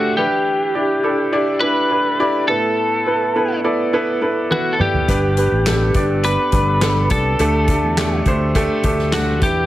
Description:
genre	piano-driven pop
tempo	104 BPM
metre	4/4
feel	straight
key	unclear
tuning	A4 = 440 Hz
part	lightly driven lead guitar	melody	0.0-9.7 s	F#4 to B4	-19 LUFS	left 1 dB	none
part	clear upright piano	accompaniment	0.0-9.7 s	G2 to D5	-18 LUFS	right 1 dB	none
part	soft-mallet drum kit	drums	4.5-9.6 s	handclaps, hi-hat, kick drum, snare drum, toms	-21 LUFS	equal	none
part	sustaining fretless electric bass	bass	5.1-9.7 s	G1 to E2	-20 LUFS	equal	none
room	light reverb, small room ambience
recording	heavily compressed radio sound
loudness	-15 LUFS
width	side -14 dB against mid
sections	0.0-9.7 A section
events	drum fill 4.5-5.1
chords	0.2 Em7; 2.5 Asus2; 5.1 G; 7.4 Dsus4

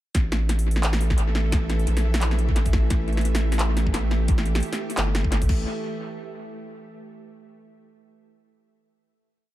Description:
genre	half-time drum and bass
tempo	174 BPM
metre	4/4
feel	swing 56% on 16ths, half-time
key	unclear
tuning	A4 = 440 Hz
part	bowed-like drone	sustained chords	0.5-5.7 s	E3 to E5	-32 LUFS	equal	built-in reverb, vintage 12-bit sampler grit, sidechain pumping
part	saturated sub bass	bass	0.1-5.7 s	G1 to Bb1	-23 LUFS	equal	none
part	drum and bass drum kit	drums	0.1-5.6 s	crash cymbal, handclaps, hi-hat, snare drum	-28 LUFS	equal	analog delay
part	electronic kick drum	drums	0.1-5.6 s	none	-23 LUFS	equal	none
room	little or no reverb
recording	echo-heavy mix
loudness	-20 LUFS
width	side -15 dB against mid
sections	0.1-5.7 drop; 5.7-7.0 final hit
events	drop 0.1-5.7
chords	0.1 A5; 5.7 N.C.

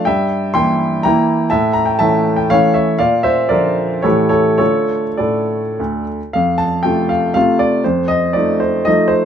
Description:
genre	classical, romantic triple-time dance for piano with dotted rhythms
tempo	97-132 BPM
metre	3/4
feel	rubato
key	D minor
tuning	A4 = 440 Hz
part	clear baby grand piano	solo	0.0-9.2 s	D2 to C6	-13 LUFS	equal	none
room	moderate small room ambience, RT60 0.5 s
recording	minimal, uncompressed stereo recording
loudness	-13 LUFS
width	side -8 dB against mid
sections	0.0-6.3 A section; 6.3-9.2 B section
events	none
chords	0.1 Edim/G; 1.5 A; 3.0 Bb; 4.0 A7; 4.6 Dm; 6.3 F; 7.9 F7

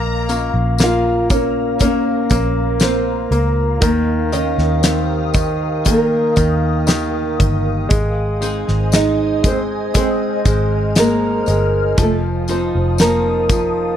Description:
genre	pop ballad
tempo	59 BPM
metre	4/4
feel	straight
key	Ab major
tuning	A4 = 440 Hz
part	clear studio violin section	second line	0.0-0.5 s	Bb5	-27 LUFS	left 1 dB	none
part	clear baby grand piano	accompaniment	0.0-14.0 s	Eb3 to Bb3	-22 LUFS	equal	none
part	glassy FM pad	sustained chords	0.0-14.0 s	Bb4 to F6	-26 LUFS	left 2 dB	ensemble chorus, built-in reverb, phaser
part	twelve-string electric guitar	arpeggios	0.0-14.0 s	Bb2 to Eb5	-27 LUFS	equal	none
part	vintage muted fingered electric bass	bass	0.0-14.0 s	F1 to Eb2	-20 LUFS	equal	none
part	huge arena drum kit	drums	0.3-13.7 s	hi-hat, kick drum, snare drum	-17 LUFS	equal	none
part	tambourine	percussion	0.3-13.7 s	none	-31 LUFS	left 11 dB	none
part	nylon-string guitar	melody	0.8-14.0 s	A3 to F5	-19 LUFS	right 1 dB	none
room	light reverb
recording	dry, close 1970s-style studio recording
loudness	-14 LUFS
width	side -10 dB against mid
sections	0.0-14.0 A section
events	none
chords	0.0 Bbmadd9; 3.8 Ebadd9; 7.9 Ab; 12.0 F7

